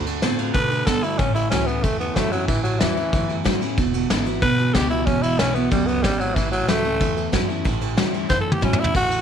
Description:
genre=rockabilly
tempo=186 BPM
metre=4/4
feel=straight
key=A mixolydian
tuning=A4 = 439 Hz
part: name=picked steel-string acoustic guitar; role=accompaniment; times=0.0-9.2 s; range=E2 to F4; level=-26 LUFS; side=left 10 dB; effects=none
part: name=electric guitar through a small old amp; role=riff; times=0.0-9.2 s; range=E2 to B3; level=-26 LUFS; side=right 11 dB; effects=spring reverb
part: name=upright bass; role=bass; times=0.0-9.2 s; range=E1 to D3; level=-27 LUFS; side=equal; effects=none
part: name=vintage brush drum kit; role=drums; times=0.1-9.2 s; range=crash cymbal, kick drum, ride cymbal, snare drum, toms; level=-24 LUFS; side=equal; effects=none
part: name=growling tenor saxophone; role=melody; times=0.5-9.2 s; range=E3 to C5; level=-23 LUFS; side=equal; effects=none
room=light reverb, small room ambience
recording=1960s-style stereo with parts hard left and right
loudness=-18 LUFS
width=side -8 dB against mid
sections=0.0-8.9 A section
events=tenor saxophone solo 0.0-8.9; drum fill 8.3-8.9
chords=0.0 Dm7; 1.2 A7; 3.8 E7; 6.4 A7

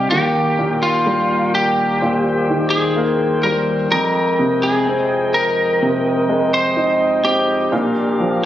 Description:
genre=pop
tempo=63 BPM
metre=4/4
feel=straight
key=Eb major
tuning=A4 = 442 Hz
part: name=lightly driven lead guitar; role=melody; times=0.0-8.4 s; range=F4 to C5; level=-18 LUFS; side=equal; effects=none
part: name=warm baby grand piano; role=accompaniment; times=0.0-8.5 s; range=Eb2 to Eb4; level=-18 LUFS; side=right 1 dB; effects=none
part: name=tonewheel organ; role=sustained chords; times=0.0-8.5 s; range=Eb2 to G5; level=-24 LUFS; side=left 2 dB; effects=lush chorus
room=little or no reverb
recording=recorded on a phone in the room, studio reverb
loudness=-15 LUFS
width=side -12 dB against mid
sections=0.0-8.5 A section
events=none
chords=0.1 Eb; 3.9 Fm7; 7.7 Bb

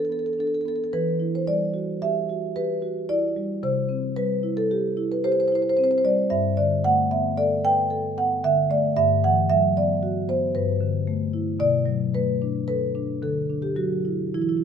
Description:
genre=classical, contemporary piece for solo marimba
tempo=112 BPM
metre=5/4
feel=rubato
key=E minor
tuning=A4 = 440 Hz
part: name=marimba with soft mallets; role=solo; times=0.0-14.6 s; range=G2 to G5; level=-21 LUFS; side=equal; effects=none
room=moderate recital hall reverb, RT60 1.7 s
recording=close, detailed microphones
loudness=-21 LUFS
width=side -7 dB against mid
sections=0.0-14.6 A section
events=none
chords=0.0 Bm7/E; 0.9 Emadd9; 3.6 C; 6.3 Gadd9; 9.0 Emadd9/G; 10.6 G69; 11.6 Bm7; 13.2 Dadd9

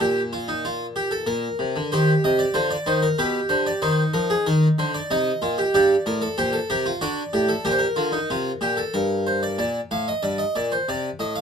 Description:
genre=classical, baroque-style 3-part fugue for harpsichord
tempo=94 BPM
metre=3/4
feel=straight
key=unclear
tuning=A4 = 441 Hz
part: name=harpsichord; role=solo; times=0.0-11.4 s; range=G2 to F5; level=-20 LUFS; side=equal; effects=none
room=light reverb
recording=minimal, uncompressed stereo recording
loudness=-20 LUFS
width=side -7 dB against mid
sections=0.0-9.6 A section; 9.6-11.4 B section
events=none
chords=0.0 Gm/Bb; 1.3 Bbadd9; 1.9 Cm; 3.2 G/B; 3.8 Cm/Eb; 5.1 Cm; 5.7 Gm; 7.0 D; 7.7 Gm/Bb; 8.9 Gm; 10.9 Cm

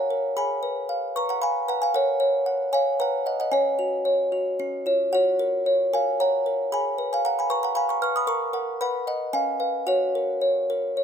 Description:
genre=classical, lullaby for music box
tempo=114 BPM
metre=3/4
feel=rubato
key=F# major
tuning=A4 = 438 Hz
part: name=music box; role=solo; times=0.0-11.0 s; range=C#4 to F6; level=-22 LUFS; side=equal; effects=none
room=light reverb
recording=close, detailed microphones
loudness=-22 LUFS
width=side -8 dB against mid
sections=0.0-11.0 A section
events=none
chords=0.4 Fdim/Ab; 1.9 F#/A#; 3.0 B; 3.5 C#sus4; 4.6 C#; 5.1 F#; 6.7 Fdim/Ab; 8.3 F#/A#; 8.8 B; 9.3 C#7; 9.9 F#

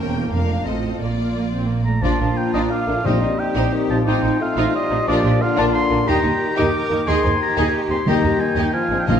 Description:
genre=classical, dramatic, fast romantic movement for symphony orchestra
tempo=178 BPM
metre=3/4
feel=straight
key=Bb major, Eb major from 6.1 s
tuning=A4 = 439 Hz
part: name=rich studio violin section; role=melody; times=0.0-9.2 s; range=D4 to G5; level=-32 LUFS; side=left 3 dB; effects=none
part: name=rich symphonic violin section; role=second line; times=0.0-9.2 s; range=Ab3 to Bb4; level=-29 LUFS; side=left 2 dB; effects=none
part: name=warm symphonic viola section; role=accompaniment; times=0.0-9.2 s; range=A3 to F4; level=-26 LUFS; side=equal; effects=none
part: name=rich symphonic cello section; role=bass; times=0.0-9.2 s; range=E2 to Bb4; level=-25 LUFS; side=right 1 dB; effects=none
part: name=rich symphonic double bass section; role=bass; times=0.0-9.2 s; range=E1 to Eb2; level=-24 LUFS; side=right 2 dB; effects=none
part: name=clear oboe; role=second line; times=1.9-9.2 s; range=D5 to D6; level=-24 LUFS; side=equal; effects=none
part: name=silver concert flute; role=second line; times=2.0-9.2 s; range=Bb5 to Ab6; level=-29 LUFS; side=left 2 dB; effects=none
part: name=warm bassoon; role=accompaniment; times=2.0-9.2 s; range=D3 to Bb3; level=-26 LUFS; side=equal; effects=none
part: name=dark French horn section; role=sustained chords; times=2.0-9.2 s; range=F3 to Eb4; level=-25 LUFS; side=left 4 dB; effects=none
part: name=timpani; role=percussion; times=2.0-3.5, 8.1-9.2 s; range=Bb2 to Eb3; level=-24 LUFS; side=left 1 dB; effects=none
room=wet scoring stage reverb, RT60 1.9 s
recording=dark, warm production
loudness=-17 LUFS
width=side -8 dB against mid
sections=0.0-2.0 A section; 2.0-9.2 A section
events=none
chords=0.0 Edim7; 0.3 Bb/F; 0.7 F7/A; 1.0 Bb; 3.0 Cm7/Bb; 4.1 F7/A; 5.1 Bb; 6.1 Eb; 7.1 Ab/Eb; 8.1 Eb; 8.7 Fm

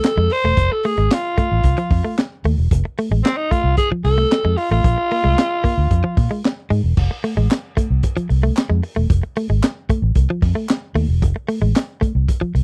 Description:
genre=funk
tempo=113 BPM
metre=4/4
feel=straight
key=unclear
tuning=A4 = 439 Hz
part: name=growling alto saxophone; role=melody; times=0.0-6.4 s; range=C4 to C5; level=-22 LUFS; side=equal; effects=none
part: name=crunchy breakbeat drum kit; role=drums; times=0.0-12.6 s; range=crash cymbal, handclaps, hi-hat, kick drum, snare drum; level=-21 LUFS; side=equal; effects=none
part: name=direct-recorded clean electric guitar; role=riff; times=0.2-12.6 s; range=F3 to Bb3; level=-25 LUFS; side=equal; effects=none
part: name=vintage muted fingered electric bass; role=bass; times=0.2-12.6 s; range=E1 to Bb2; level=-19 LUFS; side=equal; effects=none
part: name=group handclap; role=percussion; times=7.5-11.9 s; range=none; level=-32 LUFS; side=equal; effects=none
room=little or no reverb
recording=dry, close 1970s-style studio recording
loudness=-18 LUFS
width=mono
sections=0.0-7.0 A section; 7.0-12.6 B section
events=none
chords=0.0 F(#9); 4.8 Bb7(no3); 7.0 F(#9)

